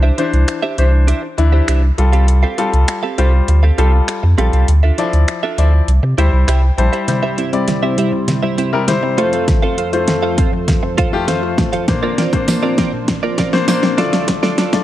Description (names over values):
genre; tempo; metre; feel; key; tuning
dance-pop; 100 BPM; 4/4; straight; F major; A4 = 441 Hz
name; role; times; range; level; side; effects
clear baby grand piano; accompaniment; 0.0-14.8 s; E3 to A5; -19 LUFS; left 4 dB; none
direct-recorded clean electric guitar; riff; 0.0-14.8 s; C4 to F5; -22 LUFS; right 5 dB; analog chorus
warm sub bass; bass; 0.0-6.9 s; Bb1 to C3; -11 LUFS; equal; sidechain pumping
pop drum kit; drums; 0.2-14.8 s; finger snaps, hi-hat, kick drum, snare drum; -18 LUFS; equal; none
chorused pulse-width pad; sustained chords; 7.1-14.8 s; D2 to C5; -22 LUFS; right 1 dB; sidechain pumping
mallet-like synth pluck; arpeggios; 7.1-14.8 s; Bb2 to F4; -23 LUFS; left 1 dB; chorus, sidechain pumping, digital delay
tambourine; percussion; 12.5-13.8 s; none; -29 LUFS; right 7 dB; none
room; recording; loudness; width
light reverb, digital ambience; dark, warm production, high-pass filter; -12 LUFS; side -14 dB against mid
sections
0.0-7.1 A section; 7.1-14.8 B section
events
kick muted 5.9-7.1; grand piano fill 5.9-7.1; build-up 7.1-14.8; drum fill 7.1-14.8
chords
0.0 Cadd9; 2.0 Fadd9/C; 4.7 Dmadd9; 5.9 C; 9.2 F; 11.9 Bbadd9; 14.0 Dm